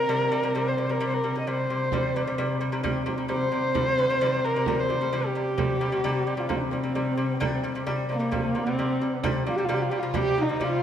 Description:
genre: mongolian traditional, Mongolian folk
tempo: 131 BPM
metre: 4/4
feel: straight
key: unclear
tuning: A4 = 441 Hz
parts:
  - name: warm horsehead fiddle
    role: melody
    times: 0.0-10.8 s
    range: Bb3 to Eb5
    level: -26 LUFS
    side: equal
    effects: none
  - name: lute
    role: arpeggios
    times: 0.0-10.8 s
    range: C3 to G3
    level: -28 LUFS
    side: left 1 dB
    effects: none
  - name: warm horsehead fiddle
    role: drone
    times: 0.0-9.3 s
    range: C4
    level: -34 LUFS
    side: right 1 dB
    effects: none
  - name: frame drum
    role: percussion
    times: 1.9-10.7 s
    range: none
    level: -33 LUFS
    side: right 5 dB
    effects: none
  - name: mellow large dizi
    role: second line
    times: 9.9-10.8 s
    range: Eb4 to G4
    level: -31 LUFS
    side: right 2 dB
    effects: none
room: wet recital hall reverb, RT60 1.6 s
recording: none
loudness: -23 LUFS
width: side -9 dB against mid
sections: 0.0-9.2 A section; 9.2-10.8 B section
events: none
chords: 0.0 C5

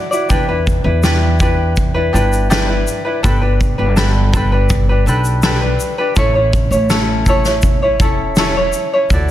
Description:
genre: acoustic pop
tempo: 82 BPM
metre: 4/4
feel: straight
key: unclear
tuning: A4 = 440 Hz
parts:
  - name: tenor ukulele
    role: accompaniment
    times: 0.0-9.3 s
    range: C#4 to D5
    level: -16 LUFS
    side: left 1 dB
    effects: none
  - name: loose indie drum kit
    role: drums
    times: 0.1-9.3 s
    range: kick drum, shaker, snare drum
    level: -17 LUFS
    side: equal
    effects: none
  - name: upright bass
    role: bass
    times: 0.3-9.3 s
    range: E1 to E2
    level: -16 LUFS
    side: equal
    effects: none
room: light reverb, small room ambience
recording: dense, heavily limited modern master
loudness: -12 LUFS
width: side -12 dB against mid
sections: 0.0-9.1 A section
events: none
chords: 0.3 Em7; 3.2 Gadd9; 6.2 A

